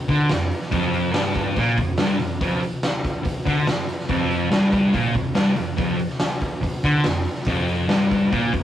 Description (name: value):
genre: garage rock duo or trio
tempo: 142 BPM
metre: 4/4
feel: straight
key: unclear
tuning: A4 = 442 Hz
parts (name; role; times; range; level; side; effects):
- fuzz guitar; riff; 0.1-8.6 s; F2 to D3; -20 LUFS; equal; distortion
- raw garage drum kit; drums; 0.1-8.6 s; hi-hat, kick drum, snare drum; -24 LUFS; equal; none
room: moderate stone room reverb, RT60 0.9 s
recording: rough rehearsal-room recording, warm saturation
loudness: -19 LUFS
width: side -11 dB against mid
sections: 0.0-8.6 A section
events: none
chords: none